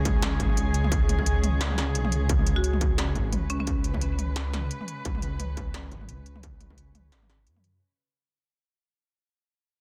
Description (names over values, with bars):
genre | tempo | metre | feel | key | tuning
half-time drum and bass | 174 BPM | 4/4 | swing 56% on 16ths, half-time | unclear | A4 = 441 Hz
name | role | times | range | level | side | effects
dark studio cello section | sustained chords | 0.0-7.8 s | C#3 to B4 | -36 LUFS | equal | sidechain pumping
dark detuned saw bass | bass | 0.0-7.8 s | G#1 to F#2 | -30 LUFS | equal | none
electronic kick drum | drums | 0.1-6.8 s | none | -31 LUFS | equal | distortion
industrial drum kit | drums | 0.1-7.7 s | hi-hat, snare drum, toms | -35 LUFS | equal | none
marimba with hard mallets | melody | 2.6-3.6 s | C#4 to F#4 | -37 LUFS | equal | dub echo
room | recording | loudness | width
little or no reverb | dense, heavily limited modern master | -26 LUFS | mono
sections
0.0-7.8 A section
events
drop 0.0-7.8; fade-out 2.3-7.8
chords
0.0 C#5